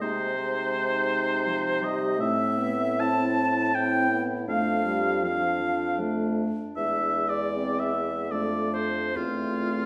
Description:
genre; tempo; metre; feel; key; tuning
classical, slow romantic movement for wind quintet; 67-85 BPM; 3/4; rubato; A minor; A4 = 439 Hz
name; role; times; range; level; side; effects
mellow hollow concert flute; melody; 0.0-9.9 s; F4 to A5; -35 LUFS; equal; none
clear oboe; second line; 0.0-9.9 s; F4 to A5; -30 LUFS; equal; none
warm French horn; accompaniment; 0.0-9.9 s; F3 to C4; -33 LUFS; equal; none
warm clarinet; accompaniment; 0.0-9.9 s; B3 to E4; -36 LUFS; equal; none
mellow bassoon; bass; 0.0-9.9 s; E2 to C3; -34 LUFS; equal; none
room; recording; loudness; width
wet recital hall reverb, RT60 1.4 s; heard from further back in the room; -26 LUFS; mono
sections
0.0-9.9 A section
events
none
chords
0.0 Ab/C; 2.2 Am; 4.5 Dm/F; 6.8 E; 8.3 F; 9.2 Am/E

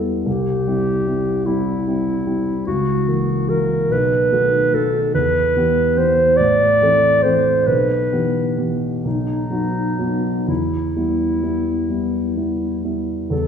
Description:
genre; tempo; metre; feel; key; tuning
classical, romantic duo for clarinet and grand piano; 41-52 BPM (dotted quarters); 6/8; rubato; E minor; A4 = 435 Hz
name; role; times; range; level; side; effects
dark baby grand piano; accompaniment; 0.0-13.5 s; A1 to A4; -20 LUFS; equal; none
mellow clarinet; melody; 0.3-13.5 s; D#4 to D5; -18 LUFS; equal; none
room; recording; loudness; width
wet scoring stage reverb, RT60 1.6 s; heard from further back in the room; -16 LUFS; side -7 dB against mid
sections
0.0-13.3 A section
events
none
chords
0.3 C; 2.7 F#7/C#; 3.9 B7; 5.1 Em; 6.4 Am; 7.7 Em/B; 9.0 B; 10.5 Em

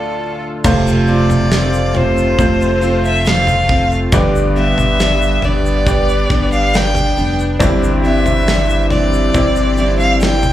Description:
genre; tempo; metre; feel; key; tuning
pop ballad; 69 BPM; 4/4; straight; unclear; A4 = 441 Hz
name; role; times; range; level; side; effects
warm violin; melody; 0.0-10.5 s; A4 to G5; -18 LUFS; equal; slapback echo
clear upright piano; accompaniment; 0.0-10.5 s; D2 to D5; -18 LUFS; left 1 dB; slapback echo
sweeping resonant pad; sustained chords; 0.0-10.5 s; D2 to A4; -24 LUFS; left 1 dB; chorus
picked steel-string acoustic guitar; arpeggios; 0.6-10.5 s; G2 to A4; -22 LUFS; right 2 dB; slapback echo
sub bass with octave; bass; 0.6-10.5 s; F1 to G1; -18 LUFS; equal; none
modern studio drum kit; drums; 0.6-10.5 s; crash cymbal, kick drum, snare drum, toms; -18 LUFS; equal; none
tube shaker; percussion; 0.7-10.5 s; none; -37 LUFS; left 2 dB; none
room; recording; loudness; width
small room reverb; live gig heard through the venue's PA, club reverb; -12 LUFS; side -12 dB against mid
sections
0.6-10.5 A section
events
none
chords
0.0 Dm; 0.6 F; 4.1 G; 7.6 Cadd9/G

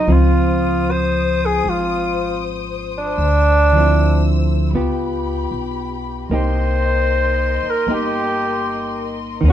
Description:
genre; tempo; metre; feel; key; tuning
jazz ballad; 77 BPM; 4/4; swing 68% on 8ths; unclear; A4 = 440 Hz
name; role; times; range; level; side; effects
breathy alto saxophone; melody; 0.0-9.5 s; D4 to C5; -19 LUFS; equal; none
hollow-body jazz guitar; accompaniment; 0.0-9.5 s; D3 to G4; -22 LUFS; right 1 dB; none
warm studio string section; sustained chords; 0.0-9.5 s; G4 to E6; -28 LUFS; left 6 dB; none
upright bass; bass; 0.0-9.5 s; G1 to Eb2; -19 LUFS; equal; none
room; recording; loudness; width
light reverb; band playing live in one room; -16 LUFS; side -11 dB against mid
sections
0.0-9.5 A section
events
none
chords
0.1 Dbmaj9; 3.2 Dm9; 4.7 Db7#11; 6.3 Cm7

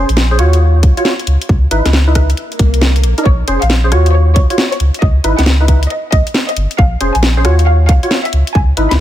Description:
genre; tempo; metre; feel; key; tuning
UK garage, two-step garage; 136 BPM; 4/4; swing 65% on 16ths; unclear; A4 = 440 Hz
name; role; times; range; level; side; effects
percussive organ stab; stabs; 0.0-9.0 s; Db4 to Db5; -17 LUFS; equal; ensemble chorus, ping-pong delay
soft dub sub bass; bass; 0.0-9.0 s; F1 to Eb2; -11 LUFS; equal; none
garage drum kit; drums; 0.1-9.0 s; hi-hat, rim click, snare drum; -17 LUFS; equal; studio reverb
electronic kick drum; drums; 0.8-8.7 s; none; -12 LUFS; equal; studio reverb
swell; sound effects; 2.5-3.3 s; none; -23 LUFS; left 2 dB; none
rich studio violin section; melody; 3.3-9.0 s; Db5 to Cb6; -20 LUFS; equal; tape echo
room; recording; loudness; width
digital ambience; none; -9 LUFS; side -12 dB against mid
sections
0.0-9.0 A section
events
swell 2.5-3.3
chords
0.4 Ebm9; 1.3 Dbm9; 2.4 Cm9; 3.3 Bbm9; 3.9 Ebm9; 4.8 Dbm9; 5.9 C5; 6.8 Bbm9; 7.4 Ebm9; 8.3 Dbm9

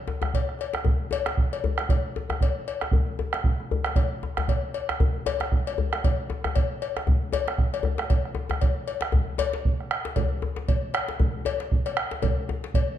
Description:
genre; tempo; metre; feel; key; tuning
west african traditional, West African drum ensemble; 116 BPM; 4/4; swing 57% on 16ths; none; none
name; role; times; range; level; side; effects
bombo; percussion; 0.1-12.9 s; none; -25 LUFS; right 2 dB; none
djembe; percussion; 0.1-12.7 s; none; -30 LUFS; left 4 dB; none
cowbell; percussion; 0.3-12.9 s; none; -31 LUFS; left 9 dB; none
room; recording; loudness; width
moderate recital hall reverb, RT60 1.4 s; dark, warm production; -23 LUFS; side -11 dB against mid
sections
0.0-9.1 A section; 9.1-13.0 B section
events
none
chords
none

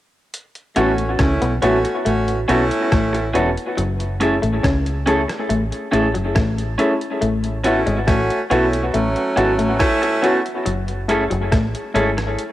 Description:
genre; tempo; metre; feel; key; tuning
lovers rock reggae; 70 BPM; 4/4; straight; A major; A4 = 440 Hz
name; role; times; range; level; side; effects
detuned 8-bit digital drum machine; drums; 0.3-12.5 s; hi-hat, kick drum, rim click; -23 LUFS; equal; cassette tape
edgy saxophone section; second line; 0.8-10.4 s; F#3 to F#4; -21 LUFS; right 1 dB; cassette tape
dark baby grand piano; accompaniment; 0.8-12.1 s; A3 to G#4; -23 LUFS; left 2 dB; cassette tape, tape echo
electric guitar through a small old amp; riff; 0.8-12.2 s; E3 to C#4; -24 LUFS; left 3 dB; cassette tape
electric guitar through a small old amp; stabs; 0.8-12.2 s; C#4 to A4; -23 LUFS; right 2 dB; cassette tape, tape echo
deep dub fingered electric bass; bass; 0.8-12.4 s; E1 to C#2; -23 LUFS; equal; none
room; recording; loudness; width
light reverb; home recording on cassette; -16 LUFS; side -14 dB against mid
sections
0.3-7.2 A section; 7.2-12.5 B section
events
none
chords
0.3 A6; 3.8 F#m7; 7.2 A6; 10.7 F#m7

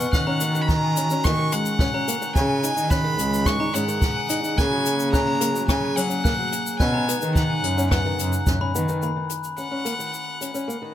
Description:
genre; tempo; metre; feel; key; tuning
folktronica; 108 BPM; 4/4; straight; unclear; A4 = 440 Hz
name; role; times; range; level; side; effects
bright violin; melody; 0.0-10.9 s; F#5 to C#6; -27 LUFS; equal; ping-pong delay
glockenspiel with soft plastic mallets; second line; 0.0-8.7 s; G#5 to F#6; -30 LUFS; left 4 dB; ping-pong delay
warbly tape-like pad; sustained chords; 0.0-10.9 s; C#3 to G#4; -34 LUFS; right 2 dB; chorus, built-in reverb
muted cello; bass; 0.0-9.0 s; C#2 to G#3; -25 LUFS; equal; none
jazz brush drum kit; drums; 0.0-10.8 s; hi-hat, rim click, shaker; -30 LUFS; left 4 dB; none
fingerpicked old ladder-braced acoustic guitar; arpeggios; 0.1-10.9 s; D#3 to D#4; -30 LUFS; left 1 dB; vintage 12-bit sampler grit, low-pass filter
kick drum; drums; 0.1-8.6 s; none; -24 LUFS; equal; none
room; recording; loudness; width
light reverb; none; -20 LUFS; side -11 dB against mid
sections
0.0-9.0 A section; 9.0-10.9 B section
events
none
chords
0.1 D#m7; 2.4 C#sus2; 4.6 F#add9/C#; 6.8 Badd9; 9.0 D#m7

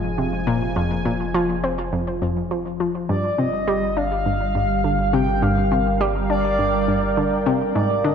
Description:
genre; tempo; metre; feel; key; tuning
ambient, sequencer-driven space music; 103 BPM; 4/4; straight; unclear; A4 = 440 Hz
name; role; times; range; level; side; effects
sweeping resonant pad; sustained chords; 0.0-8.1 s; F3 to Ab5; -25 LUFS; right 1 dB; chorus
analog pluck; riff; 0.0-8.1 s; F2 to D4; -22 LUFS; equal; chorus, tape echo
round analog bass; bass; 0.0-8.1 s; F1 to Ab1; -28 LUFS; equal; none
breathy flute-like synth lead; melody; 3.1-8.1 s; D5 to G5; -23 LUFS; equal; tremolo, lush chorus, tape echo
room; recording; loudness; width
wet concert hall reverb, RT60 2.3 s; dark, warm production; -19 LUFS; side -7 dB against mid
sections
0.0-8.1 A section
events
none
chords
0.0 Fm7; 3.1 Gm7

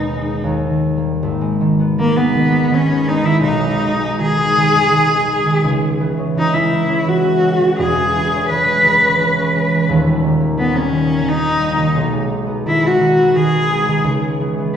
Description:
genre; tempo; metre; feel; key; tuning
classical, romantic duo for cello and harp; 74-90 BPM; 3/4; rubato; G# minor; A4 = 440 Hz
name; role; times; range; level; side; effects
rich cello; melody; 0.0-14.8 s; A#3 to B4; -15 LUFS; left 1 dB; none
concert harp; accompaniment; 0.0-14.8 s; D#1 to E4; -17 LUFS; right 1 dB; none
room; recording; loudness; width
wet scoring stage reverb, RT60 1.9 s; heard from further back in the room, nothing above 10.5 kHz; -13 LUFS; side -8 dB against mid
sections
0.0-1.2 A section; 1.2-14.8 B section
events
none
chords
0.4 D#; 1.2 G#m; 3.4 G#m/B; 5.6 C#m; 7.8 C#m/E; 9.9 D#; 11.9 G#m/B; 14.0 C#m7

